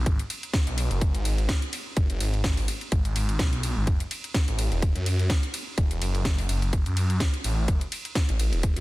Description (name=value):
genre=bass house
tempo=126 BPM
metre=4/4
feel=swing 55% on 16ths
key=unclear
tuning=A4 = 438 Hz
part: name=phased detuned saw bass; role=bass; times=0.0-8.8 s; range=E1 to F#2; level=-26 LUFS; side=equal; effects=phaser, tube saturation, sidechain pumping
part: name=electronic kick drum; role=drums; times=0.1-8.7 s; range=none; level=-24 LUFS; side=equal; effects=studio reverb
part: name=garage drum kit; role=drums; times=0.1-8.8 s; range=hi-hat, ride cymbal, snare drum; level=-32 LUFS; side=equal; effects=studio reverb
room=little or no reverb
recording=dense, heavily limited modern master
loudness=-23 LUFS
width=side -19 dB against mid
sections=0.0-8.8 A section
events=none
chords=none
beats=| 0.06 0.54 1.01 1.49 | 1.97 2.44 2.92 3.40 | 3.87 4.35 4.83 5.30 | 5.78 6.25 6.73 7.21 | 7.68 8.16 8.63